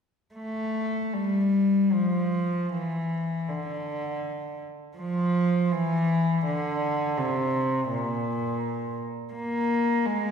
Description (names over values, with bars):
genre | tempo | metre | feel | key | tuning
classical, free, expressive piece for unaccompanied cello | 73-85 BPM | 3/4 | rubato | D minor | A4 = 442 Hz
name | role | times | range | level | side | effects
clear cello | solo | 0.3-10.3 s | Bb2 to Bb3 | -24 LUFS | equal | none
room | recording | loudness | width
wet scoring stage reverb, RT60 1.4 s | recorded in a church or concert hall | -24 LUFS | side -6 dB against mid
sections
0.4-10.3 A section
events
none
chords
none